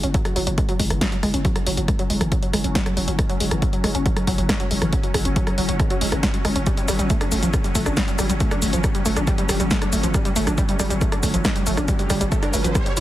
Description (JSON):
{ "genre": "driving peak-time techno", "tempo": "138 BPM", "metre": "4/4", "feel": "straight", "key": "unclear", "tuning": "A4 = 440 Hz", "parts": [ { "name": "wide unison pluck", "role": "riff", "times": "0.0-13.0 s", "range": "E3 to E4", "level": "-25 LUFS", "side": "equal", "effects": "sidechain pumping, dub echo" }, { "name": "growling 808-style bass", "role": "bass", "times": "0.0-13.0 s", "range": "F#1 to G1", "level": "-26 LUFS", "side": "equal", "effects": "overdrive, sidechain pumping, low-pass filter" }, { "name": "swarming drone", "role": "drone", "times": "0.5-13.0 s", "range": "F#3 to C#4", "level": "-29 LUFS", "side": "left 1 dB", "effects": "built-in reverb, sidechain pumping" }, { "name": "punchy analog drum machine", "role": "drums", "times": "0.0-13.0 s", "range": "hi-hat, rim click, shaker, snare drum", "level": "-26 LUFS", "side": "equal", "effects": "sidechain pumping on hats, sidechain pumping on perc" }, { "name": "electronic kick drum", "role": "drums", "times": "0.1-12.8 s", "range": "none", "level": "-22 LUFS", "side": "equal", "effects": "none" }, { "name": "riser", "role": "sound effects", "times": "11.6-13.0 s", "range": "none", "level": "-34 LUFS", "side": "right 3 dB", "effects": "none" } ], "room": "light reverb", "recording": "heavily compressed radio sound", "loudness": "-18 LUFS", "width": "side -14 dB against mid", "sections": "0.0-13.0 A section", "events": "riser 11.6-13.0", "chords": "0.0 F#5; 6.7 G5", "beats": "0.14 0.58 1.01 | 1.45 1.88 2.32 2.75 | 3.19 3.62 4.06 4.49 | 4.93 5.36 5.80 6.23 | 6.67 7.10 7.54 7.97 | 8.40 8.84 9.27 9.71 | 10.14 10.58 11.01 11.45 | 11.88 12.32 12.75" }